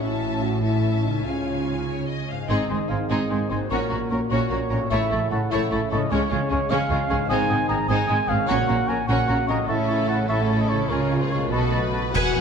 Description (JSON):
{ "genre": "cinematic, heroic adventure film score", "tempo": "99 BPM (dotted quarters)", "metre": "6/8", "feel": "straight", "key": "unclear", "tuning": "A4 = 440 Hz", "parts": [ { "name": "warm symphonic violin section", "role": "melody", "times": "0.0-12.4 s", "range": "C4 to A5", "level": "-33 LUFS", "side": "left 4 dB", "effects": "none" }, { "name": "warm symphonic violin section", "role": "second line", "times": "0.0-12.4 s", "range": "Ab3 to F#5", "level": "-33 LUFS", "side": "left 3 dB", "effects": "none" }, { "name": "warm studio viola section", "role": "accompaniment", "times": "0.0-12.4 s", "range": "Ab3 to G#5", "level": "-31 LUFS", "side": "right 1 dB", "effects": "none" }, { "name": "dark French horn section", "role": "sustained chords", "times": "0.0-12.4 s", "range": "A3 to A4", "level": "-31 LUFS", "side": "left 5 dB", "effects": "none" }, { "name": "warm trombone section", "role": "sustained chords", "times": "0.0-11.9 s", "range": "Ab2 to F4", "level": "-32 LUFS", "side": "right 4 dB", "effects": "none" }, { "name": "concert harp", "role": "arpeggios", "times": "0.0-12.4 s", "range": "Ab2 to C#5", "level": "-32 LUFS", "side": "left 10 dB", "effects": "none" }, { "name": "dark symphonic cello section", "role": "bass", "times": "0.0-12.4 s", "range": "E2 to Db3", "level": "-29 LUFS", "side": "right 3 dB", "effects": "none" }, { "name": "warm symphonic double bass section", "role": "bass", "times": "0.0-12.4 s", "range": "E1 to Db2", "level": "-28 LUFS", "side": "right 3 dB", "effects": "none" }, { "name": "mellow clarinet", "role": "second line", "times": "2.5-12.0 s", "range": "C4 to Gb4", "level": "-33 LUFS", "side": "left 2 dB", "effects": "none" }, { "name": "mellow hollow concert flute", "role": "second line", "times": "2.5-12.0 s", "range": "Cb6 to Eb6", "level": "-34 LUFS", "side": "left 2 dB", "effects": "none" }, { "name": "warm oboe", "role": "second line", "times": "2.5-12.0 s", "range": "Ab5 to Bb5", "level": "-34 LUFS", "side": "right 1 dB", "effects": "none" }, { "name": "dark trumpet", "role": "stabs", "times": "2.5-12.1 s", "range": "Bb4 to Bb5", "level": "-27 LUFS", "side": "right 2 dB", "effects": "none" }, { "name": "cymbal swell, clash cymbals and concert bass drum", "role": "percussion", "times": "9.7-12.4 s", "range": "none", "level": "-31 LUFS", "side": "equal", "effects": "none" } ], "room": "moderate scoring stage reverb, RT60 1.8 s", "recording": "dark, warm production", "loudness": "-20 LUFS", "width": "side -6 dB against mid", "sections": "0.0-2.5 A section; 2.5-12.1 A section", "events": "band accent 12.1", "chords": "0.0 A; 1.2 Db; 2.5 Ab; 3.7 Gb/Bb; 4.9 A; 6.1 Db; 7.3 Ab; 8.5 Gb/Bb; 9.7 A; 10.9 Db; 11.5 Cb7" }